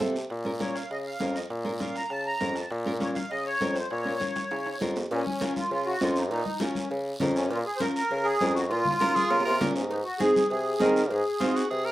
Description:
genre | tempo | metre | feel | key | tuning
latin, cumbia | 200 BPM | 4/4 | straight | Bb harmonic minor, Bb minor from 5.1 s | A4 = 439 Hz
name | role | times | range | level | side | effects
nylon-string guitar | accompaniment | 0.0-11.6 s | C4 to Bb4 | -28 LUFS | right 1 dB | none
warm bassoon | bass | 0.0-11.9 s | F2 to Eb3 | -30 LUFS | equal | none
congas | percussion | 0.0-11.9 s | none | -36 LUFS | left 4 dB | none
guiro | percussion | 0.0-11.9 s | none | -42 LUFS | right 2 dB | none
timbales and cowbell | percussion | 0.0-11.9 s | none | -39 LUFS | right 3 dB | none
accordion | melody | 0.6-11.7 s | Db4 to Bb5 | -28 LUFS | equal | light tremolo tuning, slapback echo
bright tenor saxophone | second line | 9.0-11.9 s | F4 to Bb4 | -30 LUFS | right 2 dB | none
room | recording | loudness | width
wet studio reverb, RT60 0.6 s | rough home demo mix | -25 LUFS | side -15 dB against mid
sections
0.0-5.1 A section; 5.1-11.9 B section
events
drum fill 0.0-0.3, 4.5-5.1, 8.7-9.9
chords
0.3 Bbm; 9.9 Ab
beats
0.00 | 0.30 0.60 0.90 1.21 | 1.51 1.81 2.11 2.41 | 2.71 3.01 3.31 3.61 | 3.91 4.21 4.51 4.81 | 5.11 5.41 5.71 6.01 | 6.31 6.61 6.91 7.21 | 7.51 7.81 8.11 8.41 | 8.71 9.01 9.31 9.61 | 9.91 10.21 10.51 10.81 | 11.11 11.41 11.71

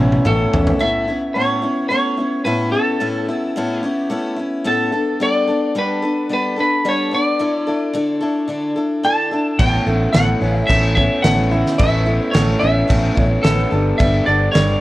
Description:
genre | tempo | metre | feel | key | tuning
folk rock and heartland rock | 109 BPM | 4/4 | straight | A mixolydian | A4 = 443 Hz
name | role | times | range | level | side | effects
picked steel-string acoustic guitar | accompaniment | 0.0-14.8 s | A2 to A4 | -20 LUFS | left 1 dB | none
electric guitar through a small old amp | riff | 0.0-0.8, 9.6-14.8 s | A2 to E4 | -22 LUFS | right 1 dB | none
fingered electric bass | bass | 0.0-0.7, 9.6-14.7 s | G1 to E2 | -19 LUFS | equal | none
loose indie drum kit | drums | 0.1-0.8, 9.6-14.7 s | crash cymbal, kick drum, snare drum, toms | -19 LUFS | equal | none
clean lap steel guitar | melody | 0.3-14.8 s | A4 to A5 | -20 LUFS | equal | none
room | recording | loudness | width
light reverb, small room ambience | worn, warbling old tape, cassette tape, warbly pitch drift | -15 LUFS | side -16 dB against mid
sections
0.8-14.8 A section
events
drum fill 0.0-0.8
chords
0.0 Aadd9; 4.9 Gadd9; 7.4 Dsus2; 9.6 Aadd9; 13.7 Gadd9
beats
0.27 | 0.82 1.37 1.92 2.46 | 3.01 3.56 4.11 4.66 | 5.20 5.75 6.30 6.85 | 7.40 7.95 8.50 9.05 | 9.60 10.15 10.70 11.25 | 11.80 12.35 12.91 13.46 | 14.01 14.56

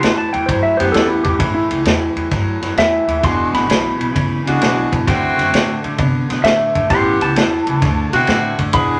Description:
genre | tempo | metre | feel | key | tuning
electric blues shuffle | 131 BPM | 4/4 | swing 67% on 8ths | unclear | A4 = 440 Hz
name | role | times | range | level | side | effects
clean lap steel guitar | second line | 0.0-9.0 s | E4 to C6 | -20 LUFS | equal | none
clean electric guitar | riff | 0.0-9.0 s | E2 to B3 | -23 LUFS | equal | spring reverb
warm saxophone section | stabs | 0.0-9.0 s | G#3 to G#4 | -21 LUFS | equal | none
upright bass | bass | 0.0-9.0 s | E1 to C3 | -26 LUFS | equal | none
vintage drum kit | drums | 0.0-8.9 s | kick drum, ride cymbal, snare drum | -21 LUFS | equal | none
room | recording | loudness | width
moderate studio reverb, RT60 0.5 s | none | -16 LUFS | mono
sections
0.0-9.0 A section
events
electric slide guitar solo 0.0-9.0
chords
0.0 A9; 3.2 E9; 5.1 D9; 6.9 A9; 7.8 D9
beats
0.02 0.48 0.94 | 1.40 1.85 2.31 2.77 | 3.23 3.69 4.15 4.61 | 5.07 5.53 5.98 6.44 | 6.90 7.36 7.82 8.28 | 8.74

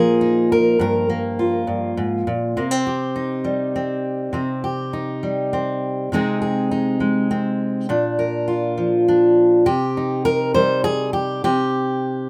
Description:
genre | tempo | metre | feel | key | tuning
folk, solo fingerstyle acoustic guitar | 68 BPM (dotted quarters) | 6/8 | straight | C minor | A4 = 440 Hz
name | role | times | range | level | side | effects
fingerpicked steel-string acoustic guitar | solo | 0.0-12.3 s | G2 to C5 | -20 LUFS | equal | none
room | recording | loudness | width
light reverb | none | -20 LUFS | mono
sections
0.0-2.6 A section; 2.6-9.7 B section; 9.7-12.3 C section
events
none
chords
0.0 Bb7sus4; 0.8 Gm7; 2.6 Cm; 6.1 Ab/C; 7.9 Bb; 9.7 Cm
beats
| 0.80 1.69 | 2.57 3.46 | 4.35 5.24 | 6.12 7.01 | 7.90 8.79 | 9.67 10.56 | 11.45

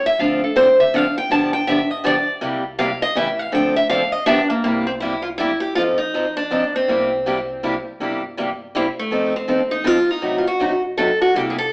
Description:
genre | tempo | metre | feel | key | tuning
acoustic string swing (jazz manouche) | 161 BPM | 3/4 | swing 62% on 8ths | C mixolydian | A4 = 438 Hz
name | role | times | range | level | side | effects
picked steel-string acoustic guitar | melody | 0.0-11.7 s | A3 to A5 | -18 LUFS | equal | none
picked steel-string acoustic guitar | accompaniment | 0.2-11.6 s | C3 to A4 | -20 LUFS | equal | none
upright bass | bass | 0.2-11.7 s | G1 to F#2 | -38 LUFS | equal | none
room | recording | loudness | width
wet large studio reverb, RT60 0.9 s | band playing live in one room, AM radio sound | -16 LUFS | side -38 dB against mid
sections
0.0-4.6 A section; 4.6-11.7 B section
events
steel-string acoustic guitar solo 0.0-4.6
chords
0.2 Dm7; 1.3 G7; 2.4 C7; 3.2 A7; 3.5 Dm7; 4.3 G7; 4.6 C7; 5.8 F7; 6.9 C7; 9.1 F7; 10.2 F#dim7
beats
| 0.18 0.55 0.92 | 1.29 1.67 2.04 | 2.41 2.78 3.15 | 3.52 3.90 4.27 | 4.64 5.01 5.38 | 5.76 6.13 6.50 | 6.88 7.25 7.62 | 7.99 8.37 8.74 | 9.11 9.48 9.86 | 10.23 10.60 10.98 | 11.35 11.72

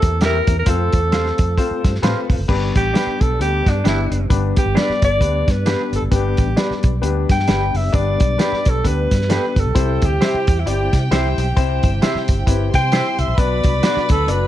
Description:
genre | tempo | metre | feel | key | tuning
uptempo 1960s-style soul | 132 BPM | 4/4 | swing 59% on 8ths | G major | A4 = 439 Hz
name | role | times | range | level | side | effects
breathy alto saxophone | melody | 0.0-14.5 s | D4 to G5 | -21 LUFS | equal | none
warm baby grand piano | accompaniment | 0.0-14.5 s | G2 to D5 | -24 LUFS | left 8 dB | none
percussive tonewheel organ | sustained chords | 0.0-14.5 s | F#3 to F4 | -31 LUFS | right 2 dB | chorus vibrato, fast rotary speaker
vintage muted fingered electric bass | bass | 0.0-14.5 s | F1 to C3 | -20 LUFS | equal | none
warm soul drum kit | drums | 0.0-14.4 s | crash cymbal, hi-hat, kick drum, snare drum | -18 LUFS | equal | none
electric guitar through a small old amp | stabs | 0.2-14.0 s | D4 to F5 | -26 LUFS | right 6 dB | lush chorus
warm studio violin section | second line | 9.7-14.5 s | G4 to C6 | -28 LUFS | right 2 dB | none
room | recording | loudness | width
light reverb, studio reverb | dark, warm production | -15 LUFS | side -12 dB against mid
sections
0.0-2.5 A section; 2.5-14.5 B section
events
alto saxophone solo 2.5-14.5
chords
0.0 C7; 0.7 F; 2.5 G; 9.8 C; 13.4 Bm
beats
0.22 | 0.67 1.12 1.58 2.03 | 2.49 2.94 3.40 3.85 | 4.30 4.76 5.21 5.67 | 6.12 6.58 7.03 7.49 | 7.94 8.39 8.85 9.30 | 9.75 10.21 10.66 11.11 | 11.57 12.02 12.47 12.93 | 13.38 13.83 14.28

